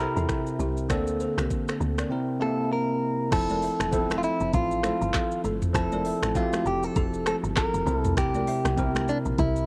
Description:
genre	afrobeats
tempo	99 BPM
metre	4/4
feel	swing 58% on 16ths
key	F major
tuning	A4 = 436 Hz
part	barky tine electric piano	accompaniment	0.0-9.7 s	C3 to E5	-31 LUFS	equal	phaser
part	balafon	riff	0.0-9.0 s	E4 to E5	-39 LUFS	equal	none
part	woody log drum bass	bass	0.0-9.7 s	E1 to E2	-33 LUFS	equal	none
part	afro-pop drum kit	drums	0.2-9.7 s	crash cymbal, finger snaps, handclaps, hi-hat, kick drum, rim click, shaker, toms	-32 LUFS	equal	none
part	direct-recorded clean electric guitar	melody	2.4-9.7 s	D4 to Bb4	-30 LUFS	equal	cassette tape
part	congas	percussion	3.5-9.1 s	none	-40 LUFS	equal	none
room	light reverb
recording	home recording on cassette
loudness	-26 LUFS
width	mono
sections	0.0-3.3 A section; 3.3-9.7 B section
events	silent gap 2.1-3.3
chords	0.0 C7; 0.9 Bbmaj7; 2.1 C7; 3.3 Fmaj7; 7.9 C7

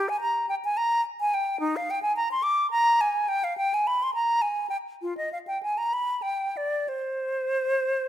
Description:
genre	classical, baroque-style fantasia for unaccompanied flute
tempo	62-73 BPM (dotted quarters)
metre	6/8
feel	rubato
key	C minor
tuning	A4 = 440 Hz
part	bright silver concert flute	solo	0.0-8.1 s	Eb4 to D6	-24 LUFS	equal	none
room	light reverb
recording	close, detailed microphones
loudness	-24 LUFS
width	side -11 dB against mid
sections	0.0-8.1 A section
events	none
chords	none

